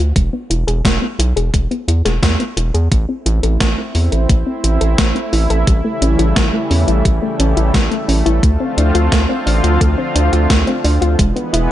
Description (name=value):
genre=synthwave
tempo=87 BPM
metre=4/4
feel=straight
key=A minor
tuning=A4 = 440 Hz
part: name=soft round pluck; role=arpeggios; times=0.0-11.7 s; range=G3 to A4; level=-21 LUFS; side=left 2 dB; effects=chorus, digital delay
part: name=round analog bass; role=bass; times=0.0-11.7 s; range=E1 to E2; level=-15 LUFS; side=equal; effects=none
part: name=electronic kick drum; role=drums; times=0.2-11.3 s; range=none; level=-16 LUFS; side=equal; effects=overdrive
part: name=gated 80s digital drum machine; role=drums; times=0.2-11.7 s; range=hi-hat, snare drum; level=-20 LUFS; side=right 1 dB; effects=gated reverb, gated reverb snare, overdrive
part: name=lush unison pad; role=sustained chords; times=2.9-11.7 s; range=C#3 to F4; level=-20 LUFS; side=equal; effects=chorus, sidechain pumping
room=little or no reverb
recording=nothing above 11.0 kHz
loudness=-13 LUFS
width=side -13 dB against mid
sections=0.0-11.7 A section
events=filter sweep on synth arpeggio sound 0.0-11.7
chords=0.2 E; 2.9 Am; 5.7 A7; 8.4 Dm7; 11.2 E